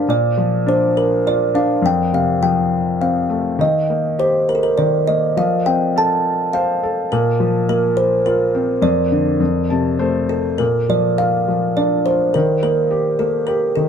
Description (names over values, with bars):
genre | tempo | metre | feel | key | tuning
children's music, lullaby | 103 BPM | 3/4 | rubato | Bb major | A4 = 441 Hz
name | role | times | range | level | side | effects
felt-muted upright piano | accompaniment | 0.0-13.9 s | F2 to A5 | -19 LUFS | left 4 dB | none
kalimba | melody | 0.1-13.9 s | A4 to A5 | -17 LUFS | right 2 dB | none
room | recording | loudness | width
light reverb | dark, warm production | -15 LUFS | side -7 dB against mid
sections
0.0-10.6 A section; 10.6-13.9 B section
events
felt piano fill 9.4-10.6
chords
0.1 Bb; 1.8 F; 3.6 Eb; 5.4 F; 7.1 Bbsus2; 8.8 Dm/F; 9.4 F; 10.6 Bb; 12.3 Eb